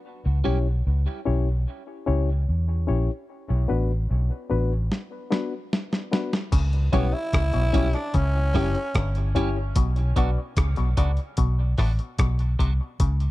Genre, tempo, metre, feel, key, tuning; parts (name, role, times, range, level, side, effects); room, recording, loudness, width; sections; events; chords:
dub reggae; 74 BPM; 4/4; straight; B minor; A4 = 440 Hz
vintage muted fingered electric bass; bass; 0.3-13.3 s; F#1 to E2; -22 LUFS; equal
clean electric guitar; accompaniment; 0.4-0.6, 6.9-12.7 s; F#3 to G4; -33 LUFS; right 8 dB; high-pass filter, dub echo
barky reed electric piano; stabs; 0.4-12.8 s; B3 to D5; -31 LUFS; left 6 dB; overdrive, high-pass filter, dub echo
dusty soul sampler-style drum kit; drums; 4.9-13.3 s; crash cymbal, hi-hat, kick drum, rim click, snare drum; -24 LUFS; equal
muted clav; riff; 6.5-13.2 s; F#2 to C#3; -33 LUFS; left 6 dB; overdrive, dub echo
growling tenor saxophone; melody; 6.9-9.4 s; B3 to E4; -30 LUFS; equal; dub echo
little or no reverb; dry, close 1970s-style studio recording; -22 LUFS; side -17 dB against mid
0.0-6.5 A section; 6.5-13.3 B section
break 0.0-6.5; drum fill 4.9-6.5; filter sweep 6.5-13.3
0.0 C#dim; 3.3 Bm; 6.5 C#dim; 9.8 Bm